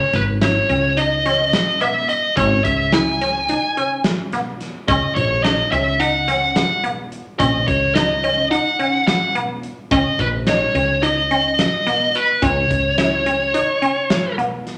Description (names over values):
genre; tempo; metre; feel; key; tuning
progressive instrumental, band music in an uneven meter; 215 BPM (eighths); 9/8; straight; C# dorian; A4 = 436 Hz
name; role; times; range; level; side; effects
smooth overdriven lead guitar; melody; 0.0-14.3 s; B4 to G#5; -20 LUFS; equal; none
resonant blip pluck; arpeggios; 0.0-14.7 s; B3 to E4; -25 LUFS; equal; phaser
woody fretless electric bass; bass; 0.1-13.6 s; G#1 to C#2; -25 LUFS; equal; none
big rock drum kit; drums; 0.1-14.8 s; hi-hat, kick drum, snare drum; -26 LUFS; equal; none
room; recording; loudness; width
wet large studio reverb, RT60 0.9 s; none; -18 LUFS; mono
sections
0.0-14.8 A section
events
none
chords
0.0 C#m7; 4.9 D#m; 12.4 C#m7